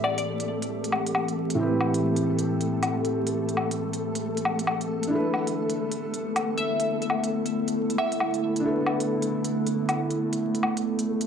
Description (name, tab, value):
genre	future garage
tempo	136 BPM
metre	4/4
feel	swing 63% on 16ths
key	A minor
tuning	A4 = 441 Hz
part	glassy wavetable pluck	melody	0.0-0.2, 6.6-8.3 s	D5 to E5	-31 LUFS	left 2 dB	chorus, tape echo
part	felt-muted upright piano	accompaniment	0.0-11.3 s	A2 to B4	-30 LUFS	right 1 dB	analog delay
part	warbly tape-like pad	sustained chords	0.0-11.3 s	D3 to A4	-27 LUFS	equal	chorus, built-in reverb
part	electronic woodblock and hi-hat	drums	0.0-11.3 s	none	-29 LUFS	left 2 dB	overdrive
part	flickering grainy texture	texture	0.0-11.3 s	A3 to A4	-33 LUFS	equal	built-in reverb
room	wet lush hall reverb, RT60 2.2 s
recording	vinyl crackle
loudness	-24 LUFS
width	side -7 dB against mid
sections	0.0-11.3 A section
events	none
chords	0.0 Am7; 5.1 E7sus4